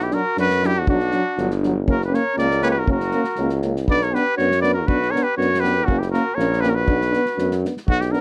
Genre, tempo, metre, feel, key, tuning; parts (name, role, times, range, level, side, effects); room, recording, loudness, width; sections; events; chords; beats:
balkan folk, Balkan brass band; 120 BPM; 2/4; straight; B harmonic minor; A4 = 436 Hz
warm trumpet; melody; 0.0-8.2 s; F#4 to D5; -24 LUFS; equal
warm flugelhorn; second line; 0.0-7.6 s; C#4 to B4; -32 LUFS; equal
clear tuba; bass; 0.0-8.1 s; F#1 to F#2; -25 LUFS; equal
dark trombone; accompaniment; 0.1-8.2 s; C#4 to D4; -29 LUFS; equal
warm euphonium; accompaniment; 0.1-8.2 s; F#3 to B3; -29 LUFS; equal
unplugged drum kit; percussion; 0.1-8.2 s; kick drum, snare drum; -28 LUFS; equal
light reverb; dry, close 1970s-style studio recording; -20 LUFS; mono
0.0-7.9 A section
0.0 Bm; 1.9 F#; 3.9 Bm; 5.9 F#; 6.9 Bm
0.37 | 0.88 1.38 | 1.88 2.38 | 2.88 3.38 | 3.88 4.38 | 4.88 5.38 | 5.88 6.38 | 6.88 7.38 | 7.88